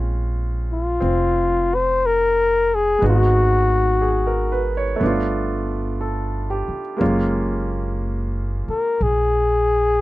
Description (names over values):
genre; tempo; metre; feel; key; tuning
jazz ballad; 60 BPM; 4/4; swing 67% on 8ths; Bb minor; A4 = 439 Hz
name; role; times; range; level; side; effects
clear grand piano; accompaniment; 0.0-10.0 s; Ab3 to Db5; -25 LUFS; right 2 dB; none
upright bass; bass; 0.0-10.0 s; F1 to Bb1; -22 LUFS; equal; none
warm flugelhorn; melody; 0.7-10.0 s; F4 to C5; -18 LUFS; left 2 dB; none
room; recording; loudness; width
little or no reverb; dry, close 1970s-style studio recording; -18 LUFS; side -17 dB against mid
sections
0.0-10.0 A section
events
none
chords
0.0 Bbm7; 3.0 Abm7; 5.0 G9; 7.0 Gbmaj9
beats
0.01 1.01 2.01 | 3.01 4.01 5.01 6.01 | 7.01 8.01 9.01 10.01